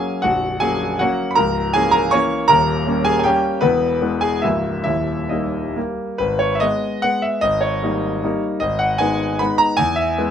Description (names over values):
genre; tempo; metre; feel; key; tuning
classical, romantic triple-time dance for piano with dotted rhythms; 129-173 BPM; 3/4; rubato; G# minor; A4 = 440 Hz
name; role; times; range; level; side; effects
clear concert grand piano; solo; 0.0-10.3 s; Bb0 to C#6; -16 LUFS; equal; none
room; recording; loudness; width
light reverb; close, detailed microphones; -16 LUFS; side -8 dB against mid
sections
0.0-6.2 A section; 6.2-10.3 B section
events
none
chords
0.2 Gb/Bb; 1.4 A#dim/C#; 2.5 D#7; 3.6 E; 4.4 A#dim/C#; 4.9 D#; 6.2 G#m; 7.4 D#7/G#; 8.6 G#m; 9.8 E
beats
| 0.24 0.62 1.00 | 1.37 1.75 2.13 | 2.49 2.86 3.25 | 3.63 4.02 4.44 | 4.86 5.31 5.76 | 6.20 6.62 7.04 | 7.43 7.83 8.24 | 8.62 9.01 9.41 | 9.79 10.18